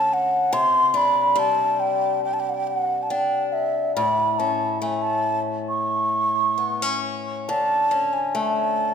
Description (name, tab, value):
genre	celtic folk, Celtic slow air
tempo	64-73 BPM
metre	4/4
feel	rubato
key	unclear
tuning	A4 = 436 Hz
part	baroque flute	melody	0.0-8.9 s	E5 to C#6	-20 LUFS	right 1 dB	none
part	picked acoustic archtop guitar	accompaniment	0.0-8.9 s	A2 to D4	-26 LUFS	left 5 dB	none
room	wet church reverb, RT60 3.4 s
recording	minimal, uncompressed stereo recording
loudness	-19 LUFS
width	side -7 dB against mid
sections	0.0-8.9 A section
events	none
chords	0.0 D5; 0.5 Csus2; 3.9 A; 7.5 D5